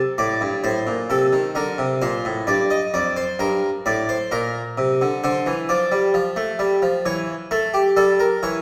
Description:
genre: classical, baroque-style two-part invention for harpsichord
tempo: 65 BPM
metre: 4/4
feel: straight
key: G minor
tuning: A4 = 440 Hz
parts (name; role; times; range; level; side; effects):
- harpsichord; solo; 0.2-8.6 s; F2 to Eb5; -21 LUFS; equal; none
room: wet recital hall reverb, RT60 1.4 s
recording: heard from further back in the room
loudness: -21 LUFS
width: mono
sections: 0.0-8.6 A section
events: none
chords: 0.0 D5; 1.6 Gm; 5.2 Dm; 7.1 A7/E

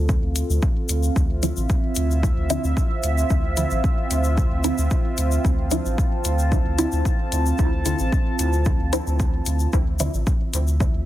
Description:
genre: dub techno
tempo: 112 BPM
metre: 4/4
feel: straight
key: D minor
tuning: A4 = 439 Hz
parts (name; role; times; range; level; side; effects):
- dark analog pad; sustained chords; 0.0-11.1 s; C4 to A5; -27 LUFS; right 2 dB; chorus, phaser, sidechain pumping
- soft dub sub bass; bass; 0.0-11.1 s; A1 to D2; -22 LUFS; equal; sidechain pumping
- electronic kick drum; drums; 0.1-10.9 s; none; -21 LUFS; equal; none
- egg shaker; percussion; 0.1-10.9 s; none; -33 LUFS; left 5 dB; none
- electronic hi-hat; drums; 0.4-10.6 s; none; -28 LUFS; left 3 dB; overdrive
- filtered dub chord stab; stabs; 1.4-10.1 s; D3 to E4; -28 LUFS; equal; phaser, sidechain pumping, dub echo
room: light reverb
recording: dense, heavily limited modern master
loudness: -19 LUFS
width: side -14 dB against mid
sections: 0.0-11.1 A section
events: filter sweep on synth stab 0.0-11.1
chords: 0.0 Dm9

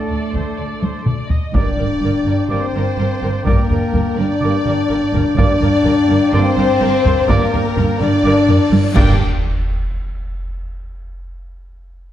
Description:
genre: cinematic, epic orchestral film score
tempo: 125 BPM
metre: 4/4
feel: straight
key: G minor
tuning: A4 = 438 Hz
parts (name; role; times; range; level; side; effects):
- warm symphonic violin section; melody; 0.0-9.2 s; A4 to G5; -27 LUFS; left 3 dB; none
- warm symphonic violin section; second line; 0.0-9.2 s; A4 to G5; -25 LUFS; left 3 dB; none
- bright woodwind section; sustained chords; 0.0-9.2 s; A3 to A5; -30 LUFS; right 2 dB; none
- mellow French horn section; sustained chords; 0.0-9.2 s; A3 to G4; -18 LUFS; left 3 dB; none
- mellow trombone section; sustained chords; 0.0-9.2 s; G2 to Bb3; -28 LUFS; right 2 dB; none
- clear trumpet; stabs; 0.0-9.2 s; D5; -28 LUFS; right 3 dB; none
- rich symphonic cello section; bass; 0.0-9.2 s; G2 to A3; -23 LUFS; right 3 dB; none
- rich symphonic viola section; accompaniment; 0.1-9.2 s; D4 to Eb5; -28 LUFS; equal; none
- warm symphonic double bass section; bass; 0.1-9.2 s; G1 to D2; -21 LUFS; right 3 dB; none
- taiko ensemble; drums; 0.3-9.9 s; none; -18 LUFS; equal; none
- impact and reverse cymbal; sound effects; 1.5-3.5, 8.7-10.9 s; none; -28 LUFS; equal; none
- cymbal swell, clash cymbals and concert bass drum; percussion; 5.4-9.9 s; none; -24 LUFS; equal; none
room: wet scoring stage reverb, RT60 1.5 s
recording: dark, warm production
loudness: -13 LUFS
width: side -11 dB against mid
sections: 0.0-1.5 A section; 1.5-9.2 B section; 9.2-11.1 C section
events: drum fill 0.8-1.5, 8.5-9.2; impact 1.5-3.5, 9.2-11.1; band accent 9.2-9.7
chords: 0.0 D5; 1.5 Gm; 9.2 N.C.

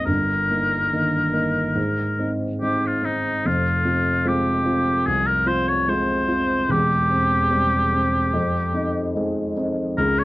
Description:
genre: classical, romantic duo for oboe and grand piano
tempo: 73 BPM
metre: 4/4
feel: rubato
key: unclear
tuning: A4 = 443 Hz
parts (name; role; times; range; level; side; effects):
- clear oboe; melody; 0.0-10.2 s; Eb4 to Db5; -22 LUFS; left 1 dB; none
- dark baby grand piano; accompaniment; 0.0-10.2 s; E1 to F4; -22 LUFS; equal; none
room: light reverb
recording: worn, warbling old tape, cassette tape, warbly pitch drift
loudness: -19 LUFS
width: side -18 dB against mid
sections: 0.0-10.2 A section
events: none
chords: 0.1 Eb/G; 1.8 Ab; 3.5 Fm; 6.7 C/E; 8.3 Fm7

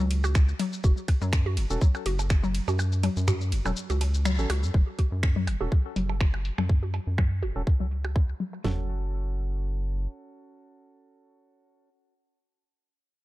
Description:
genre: minimal techno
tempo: 123 BPM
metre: 4/4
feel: swing 54% on 16ths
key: F# minor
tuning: A4 = 444 Hz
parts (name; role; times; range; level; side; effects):
- hollow square pluck; riff; 0.0-8.9 s; F#3 to F#4; -33 LUFS; left 2 dB; chorus, sidechain pumping, tape echo
- rubbery square bass; bass; 0.0-10.1 s; E1 to F#2; -27 LUFS; equal; tube saturation, sidechain pumping
- garage drum kit; drums; 0.1-8.6 s; finger snaps, hi-hat, ride cymbal, shaker; -36 LUFS; equal; low-pass filter on perc, low-pass filter on cymbals, low-pass filter on hats, low-pass filter on snare
- electronic percussion blips and toms; percussion; 0.2-8.1 s; none; -32 LUFS; right 2 dB; ping-pong delay
- garage drum kit; drums; 0.4-8.8 s; kick drum, snare drum, toms; -22 LUFS; equal; none
- percussive organ stab; stabs; 1.7-11.9 s; C#4 to A4; -40 LUFS; right 2 dB; chorus, ping-pong delay
room: little or no reverb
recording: dark, warm production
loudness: -24 LUFS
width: side -17 dB against mid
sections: 0.0-4.7 A section; 4.7-8.6 B section; 8.6-12.5 C section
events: drop 0.0-4.7; kick drops out 2.8-4.7; band accent 4.3; filter sweep on drum 4.7-8.6; filter sweep on analog synth bass 4.7-8.6; filter sweep on synth arpeggio sound 4.7-8.6; filter sweep on synth stab 4.7-8.6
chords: 0.0 F#m; 4.7 F#5; 8.6 F#m

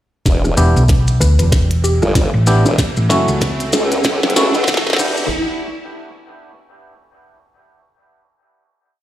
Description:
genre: glitch hop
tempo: 95 BPM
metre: 4/4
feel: swing 59% on 16ths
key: E dorian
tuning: A4 = 440 Hz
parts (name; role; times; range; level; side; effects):
- dark analog pad; sustained chords; 1.5-5.3 s; A4 to E6; -27 LUFS; right 1 dB; chorus, sidechain pumping
- formant-sweep wobble bass; bass; 0.3-5.3 s; E1 to C#2; -16 LUFS; equal; chorus
- electronic kick drum; drums; 0.3-5.1 s; none; -16 LUFS; equal; none
- glitchy drum kit; drums; 0.3-5.1 s; crash cymbal, hi-hat, rim click, snare drum; -20 LUFS; equal; overdrive
- maracas; percussion; 0.3-5.3 s; none; -25 LUFS; left 3 dB; none
- riser; sound effects; 1.5-5.3 s; none; -25 LUFS; right 1 dB; none
- clav; stabs; 0.6-5.2 s; A3 to G4; -20 LUFS; equal; vintage 12-bit sampler grit, sidechain pumping, low-pass filter, dub echo
- hollow-body short-scale fingered electric bass; bass; 0.6-5.0 s; E1 to D2; -13 LUFS; equal; none
- woody wave-folded pluck; melody; 1.2-4.6 s; G4 to B4; -26 LUFS; left 2 dB; wide subtle chorus, dub echo
room: light reverb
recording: played on a big sound system in a bare room, stone room reverb, high-pass filter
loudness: -12 LUFS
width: side -13 dB against mid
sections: 0.3-5.3 build; 5.3-7.8 final hit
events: build-up 0.3-5.3; drum fill 0.3-5.3; filter sweep on clav 0.3-5.3; filter sweep 0.3-5.3; riser 1.5-5.3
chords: 0.3 Em7; 2.8 F#m7; 5.0 Em7; 5.3 N.C.

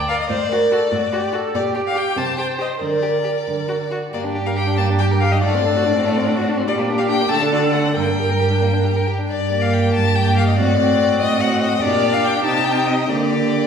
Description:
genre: quick classical-period movement for string quartet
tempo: 89-97 BPM (dotted quarters)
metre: 6/8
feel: rubato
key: G minor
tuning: A4 = 441 Hz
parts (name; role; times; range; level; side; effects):
- rich viola; accompaniment; 0.0-13.7 s; Bb3 to D5; -22 LUFS; right 2 dB; none
- rich cello; bass; 0.0-13.7 s; D2 to D3; -21 LUFS; right 2 dB; none
- rich violin; melody; 0.1-13.7 s; D5 to A5; -21 LUFS; left 6 dB; none
- clear violin; second line; 0.1-13.7 s; G3 to Bb4; -25 LUFS; left 2 dB; none
room: wet recital hall reverb, RT60 1.4 s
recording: recorded in a church or concert hall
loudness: -16 LUFS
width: side -7 dB against mid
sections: 0.0-9.3 A section; 9.3-13.7 A section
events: none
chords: 0.3 D/A; 1.5 Gm/Bb; 2.2 C5; 2.8 Gm/D; 4.1 Gm; 5.4 D7/A; 6.7 Gm/Bb; 7.3 D; 8.0 Gm; 10.6 D7/A; 11.8 Gm/Bb; 12.4 Cm; 13.1 Gm/D

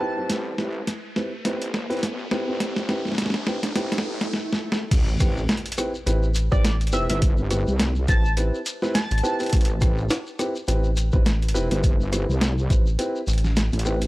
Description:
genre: glitch hop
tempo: 104 BPM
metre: 4/4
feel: swing 57% on 16ths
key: A minor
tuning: A4 = 438 Hz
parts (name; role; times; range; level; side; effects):
- sync lead; melody; 0.0-0.3, 6.5-9.5 s; D5 to A5; -30 LUFS; right 1 dB; analog chorus, tape echo
- dark concert grand piano; stabs; 0.0-14.0 s; C4 to B4; -28 LUFS; equal; sidechain pumping, low-pass filter, tape echo
- riser, swell and impact; sound effects; 0.0-7.2 s; none; -33 LUFS; equal; none
- wobble bass; bass; 0.3-14.1 s; G1 to C2; -26 LUFS; equal; chorus, high-pass filter
- boom bap sampler-style drum kit; drums; 0.3-14.1 s; crash cymbal, hi-hat, rim click, snare drum; -26 LUFS; equal; overdrive
- electronic kick drum; drums; 4.9-12.8 s; none; -20 LUFS; equal; overdrive
- shekere; percussion; 4.9-14.1 s; none; -36 LUFS; left 2 dB; none
- rubbery square bass; bass; 6.1-13.7 s; A1; -22 LUFS; equal; none
room: little or no reverb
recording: dry, gritty hardware recording, cassette tape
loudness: -21 LUFS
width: side -19 dB against mid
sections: 0.0-4.9 A section; 4.9-14.1 B section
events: build-up 0.0-4.9; drum fill 0.0-4.3, 4.3-4.9; riser 0.0-4.3; swell 3.8-4.9; drop 4.9-14.1; impact 4.9-7.2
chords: 0.0 Am7

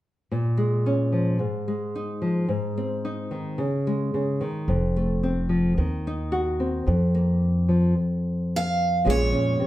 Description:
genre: acoustic folk duo or small band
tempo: 110 BPM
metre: 4/4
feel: straight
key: Bb minor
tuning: A4 = 440 Hz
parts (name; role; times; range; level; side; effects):
- nylon-string guitar; accompaniment; 0.3-9.7 s; F2 to Ab4; -23 LUFS; equal; none
- upright bass; bass; 4.7-9.3 s; F1 to F2; -24 LUFS; equal; none
- picked steel-string acoustic guitar; melody; 8.6-9.7 s; Db5 to F5; -24 LUFS; right 2 dB; none
room: wet studio reverb, RT60 0.8 s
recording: heard from further back in the room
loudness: -22 LUFS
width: side -14 dB against mid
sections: 0.3-9.1 A section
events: stop 8.0-9.1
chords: 0.3 Bbm7; 1.4 Fm7/Ab; 2.5 Ab; 3.6 Db5; 4.7 F; 5.8 Cdim/Eb; 6.9 Fsus4; 8.0 N.C.; 9.1 Bbm7

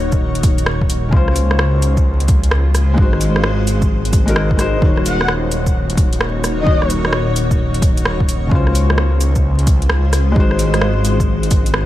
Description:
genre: future garage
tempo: 130 BPM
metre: 4/4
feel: swing 65% on 16ths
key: Eb dorian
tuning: A4 = 437 Hz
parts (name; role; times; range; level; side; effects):
- felt-muted upright piano; accompaniment; 0.0-11.9 s; Db3 to Db5; -22 LUFS; left 3 dB; sidechain pumping, ping-pong delay
- granular cloud pad; sustained chords; 0.0-11.9 s; Ab3 to Db5; -24 LUFS; equal; built-in reverb, vintage 12-bit sampler grit, sidechain pumping
- swelling detuned saw bass; bass; 0.0-11.9 s; Eb1 to Db2; -17 LUFS; equal; sidechain pumping
- deep house drum kit; drums; 0.1-11.9 s; cabasa, hi-hat, rim click; -22 LUFS; right 1 dB; overdrive, small room ambience
- electronic kick drum; drums; 0.1-11.6 s; none; -16 LUFS; equal; overdrive, small room ambience
- breathy flute-like synth lead; melody; 5.1-6.9 s; Eb5 to Gb5; -25 LUFS; left 2 dB; ensemble chorus, tape echo
room: digital ambience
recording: vinyl crackle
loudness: -13 LUFS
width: side -14 dB against mid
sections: 0.0-11.9 A section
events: none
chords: 0.0 Ebm7; 1.1 Dbmaj7; 3.0 Ab7; 4.8 Ebm7; 8.5 Dbmaj7; 10.4 Ab7

